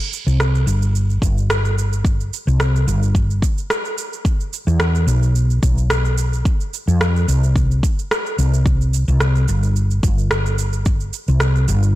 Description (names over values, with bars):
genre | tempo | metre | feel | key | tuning
sunset chillout | 109 BPM | 4/4 | straight | C major | A4 = 440 Hz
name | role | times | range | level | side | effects
electronic cabasa and rim click | drums | 0.0-11.9 s | none | -24 LUFS | right 1 dB | soft clipping on snare, studio reverb
woody fretless electric bass | bass | 0.3-12.0 s | G1 to F2 | -16 LUFS | equal | ensemble chorus
electronic kick drum | drums | 1.2-11.0 s | none | -18 LUFS | equal | studio reverb
room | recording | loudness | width
light reverb | blown-out, overdriven recording, overdrive | -15 LUFS | side -16 dB against mid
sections
0.0-12.0 A section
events
none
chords
none